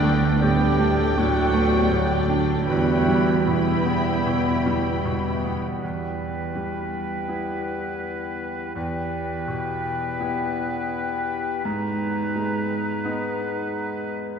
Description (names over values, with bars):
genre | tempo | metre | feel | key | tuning
cinematic | 74-86 BPM | 4/4 | rubato | E minor | A4 = 442 Hz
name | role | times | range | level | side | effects
muted studio violin section | melody | 0.0-5.6 s | G5 to B5 | -30 LUFS | left 1 dB | none
mellow clarinet | second line | 0.0-14.2 s | D4 to G4 | -30 LUFS | right 1 dB | none
muted studio violin section | second line | 0.0-5.6 s | D5 to G5 | -33 LUFS | left 1 dB | none
bright concert grand piano | accompaniment | 0.0-14.4 s | D2 to E4 | -26 LUFS | right 1 dB | none
muted studio viola section | accompaniment | 0.0-5.6 s | A3 to E4 | -30 LUFS | right 1 dB | none
mellow French horn section | sustained chords | 0.0-14.4 s | D3 to B4 | -32 LUFS | left 3 dB | none
muted studio cello section | bass | 0.0-5.4 s | A3 to D4 | -28 LUFS | equal | none
muted studio double bass section | bass | 0.0-5.6 s | D2 to E2 | -27 LUFS | right 2 dB | none
bright oboe | second line | 5.8-14.2 s | B4 | -33 LUFS | right 2 dB | none
silver concert flute | second line | 5.8-14.2 s | G5 to A#5 | -31 LUFS | left 2 dB | none
room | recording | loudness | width
wet cathedral reverb, RT60 4.6 s | none | -21 LUFS | side -7 dB against mid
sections
0.0-5.8 A section; 5.8-14.4 B section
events
none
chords
0.0 Dsus4; 2.7 Em; 11.7 G#madd9